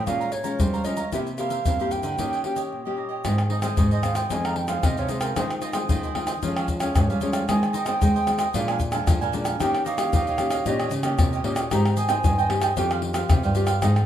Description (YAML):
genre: samba and choro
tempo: 113 BPM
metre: 4/4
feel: straight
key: Ab major from 3.3 s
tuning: A4 = 440 Hz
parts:
  - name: wooden flute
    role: melody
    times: 0.0-12.9 s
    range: Bb4 to Bb5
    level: -28 LUFS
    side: right 3 dB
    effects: none
  - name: cavaquinho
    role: accompaniment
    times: 0.0-14.0 s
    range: D4 to Bb5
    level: -31 LUFS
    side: right 6 dB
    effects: none
  - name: nylon-string guitar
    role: accompaniment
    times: 0.0-14.1 s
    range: F2 to G4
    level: -30 LUFS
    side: left 4 dB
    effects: none
  - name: nylon-string guitar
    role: bass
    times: 0.0-14.1 s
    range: F2 to C4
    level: -26 LUFS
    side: right 1 dB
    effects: none
  - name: tube shaker, surdo, pandeiro and tamborim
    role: percussion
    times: 0.1-14.1 s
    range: none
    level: -25 LUFS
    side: left 1 dB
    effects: none
room: moderate large studio reverb, RT60 0.9 s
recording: minimal, uncompressed stereo recording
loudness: -21 LUFS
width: side -10 dB against mid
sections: 0.0-3.3 A section; 3.3-14.1 B section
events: break 2.7-3.3; flute solo 3.3-14.1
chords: 0.1 Bbm7; 1.1 C7; 2.2 Eb7; 3.3 Ab; 4.3 Fm7; 5.4 Ab6/Eb; 6.4 Db/F; 7.5 Ab; 8.5 Bb7; 9.6 Eb7; 11.7 Abmaj7; 12.8 Fsus2